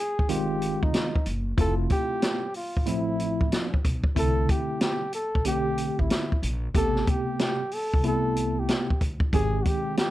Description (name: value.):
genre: hip hop, jazz-hop.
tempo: 93 BPM.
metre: 4/4.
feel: swing 64% on 16ths.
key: C major.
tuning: A4 = 440 Hz.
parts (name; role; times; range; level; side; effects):
breathy flugelhorn; melody; 0.0-10.1 s; Eb4 to A4; -29 LUFS; equal; none.
upright bass; bass; 0.2-9.6 s; F1 to D2; -30 LUFS; equal; none.
open jazz drum kit; drums; 0.2-10.1 s; hi-hat, kick drum, snare drum; -26 LUFS; equal; none.
tine electric piano; accompaniment; 0.3-10.1 s; C3 to G4; -29 LUFS; equal; overdrive, fast stereo tremolo.
room: light reverb.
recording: dark, warm production.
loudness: -23 LUFS.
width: side -15 dB against mid.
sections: 0.0-10.1 A section.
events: none.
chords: 0.0 Abmaj7; 1.6 Fmaj7; 4.2 C69; 6.7 Am9; 9.3 Abmaj7.